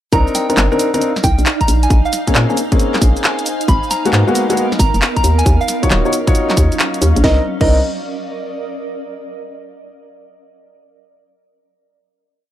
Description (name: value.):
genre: UK garage, two-step garage.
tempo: 135 BPM.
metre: 4/4.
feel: swing 67% on 16ths.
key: C phrygian.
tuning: A4 = 440 Hz.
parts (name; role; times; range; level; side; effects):
soft synth bell; melody; 0.1-7.8 s; Eb5 to Cb6; -22 LUFS; right 1 dB; chorus, tape echo.
soft string machine; sustained chords; 0.1-7.2 s; Eb4 to F5; -27 LUFS; equal; ensemble chorus, sidechain pumping.
dark baby grand piano; stabs; 0.1-7.8 s; Ab3 to Db5; -17 LUFS; left 2 dB; analog delay.
hollow knocking FM bass; bass; 0.1-7.8 s; Eb1 to Bb2; -14 LUFS; equal; tube saturation.
electronic kick drum; drums; 0.1-7.7 s; none; -15 LUFS; equal; small room ambience.
garage drum kit; drums; 0.1-7.7 s; cabasa, crash cymbal, handclaps, hi-hat, snare drum; -19 LUFS; equal; small room ambience.
granular cloud pad; texture; 0.8-9.0 s; Gb3 to Bb5; -25 LUFS; right 2 dB; built-in reverb, sidechain pumping.
room: little or no reverb.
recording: dry, gritty hardware recording.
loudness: -12 LUFS.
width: side -12 dB against mid.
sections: 0.1-7.2 drop; 7.2-9.0 final chord.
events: drop 0.1-7.2.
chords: 0.1 Cm9; 1.7 Bbm9; 3.5 Abm9; 5.2 Ebm9; 7.2 Cm9.